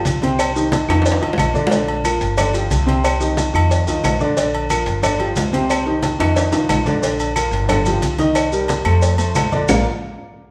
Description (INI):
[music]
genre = latin, salsa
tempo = 181 BPM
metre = 4/4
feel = straight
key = Bb major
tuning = A4 = 440 Hz
[part]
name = warm upright piano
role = accompaniment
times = 0.0-9.8 s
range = C3 to Bb5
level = -22 LUFS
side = equal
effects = none
[part]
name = upright bass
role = bass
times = 0.1-9.8 s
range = G1 to F2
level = -23 LUFS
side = equal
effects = none
[part]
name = agogo bells and timbales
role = percussion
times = 0.1-9.8 s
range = none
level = -24 LUFS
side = equal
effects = none
[part]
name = congas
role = percussion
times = 0.1-9.8 s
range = none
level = -28 LUFS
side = equal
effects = none
[part]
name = cowbell and bongos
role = percussion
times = 0.1-9.8 s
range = none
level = -28 LUFS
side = equal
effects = none
[part]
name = maracas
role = percussion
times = 0.1-9.8 s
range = none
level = -33 LUFS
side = equal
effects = none
[part]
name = claves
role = percussion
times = 0.4-9.8 s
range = none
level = -33 LUFS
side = equal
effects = none
[sound]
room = wet large studio reverb, RT60 1.3 s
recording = band playing live in one room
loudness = -18 LUFS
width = mono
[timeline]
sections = 0.0-7.0 A section; 7.0-9.7 B section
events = drum fill 0.9-1.7, 6.2-7.0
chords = 0.4 Cm; 1.1 F5; 1.7 Bb; 2.4 G5; 3.0 Cm; 3.7 F5; 4.4 Bb; 5.0 G5; 5.7 Cm; 6.4 F5; 7.0 Bb; 7.7 G5; 8.4 Cm7; 9.0 F; 9.7 Bb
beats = 0.05 | 0.39 0.72 1.05 1.38 | 1.71 2.05 2.38 2.71 | 3.04 3.37 3.71 4.04 | 4.37 4.70 5.04 5.37 | 5.70 6.03 6.37 6.70 | 7.03 7.36 7.69 8.03 | 8.36 8.69 9.02 9.36 | 9.69